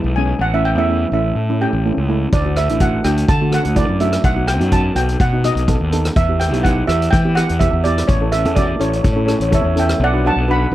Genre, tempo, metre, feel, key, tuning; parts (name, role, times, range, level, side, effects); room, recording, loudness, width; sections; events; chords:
calypso; 125 BPM; 4/4; straight; A4 = 440 Hz
steel pan; melody; 0.0-10.7 s; C#5 to B5; -20 LUFS; right 2 dB
steel pan; accompaniment; 0.0-10.7 s; G#3 to C#5; -21 LUFS; equal
fuzz fingered electric bass; bass; 0.0-10.7 s; A1 to E3; -18 LUFS; equal; overdrive
street-band drum kit; drums; 2.3-10.0 s; hi-hat, kick drum, rim click; -19 LUFS; equal
little or no reverb; dry, close 1970s-style studio recording; -14 LUFS; side -14 dB against mid
0.0-10.0 A section
0.4 A7; 2.3 Dadd9; 4.2 B7; 6.2 Em; 8.1 A; 10.0 Bm